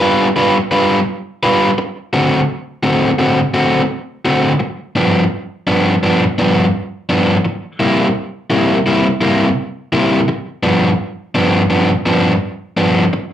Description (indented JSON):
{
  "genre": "blues",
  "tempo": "85 BPM",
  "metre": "4/4",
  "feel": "swing 64% on 8ths",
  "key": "G mixolydian",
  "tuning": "A4 = 440 Hz",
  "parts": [
    { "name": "overdriven semi-hollow guitar", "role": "solo", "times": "0.0-13.2 s", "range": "G2 to B4", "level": "-12 LUFS", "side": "equal", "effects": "slapback echo" }
  ],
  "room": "moderate club reverb, RT60 0.5 s",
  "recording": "live gig heard through the venue's PA, club reverb",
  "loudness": "-13 LUFS",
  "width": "side -10 dB against mid",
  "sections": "0.0-4.7 A section; 4.7-13.3 B section",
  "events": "none",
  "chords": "0.0 G7; 1.9 D7; 4.7 G7; 7.6 C7; 10.4 G7"
}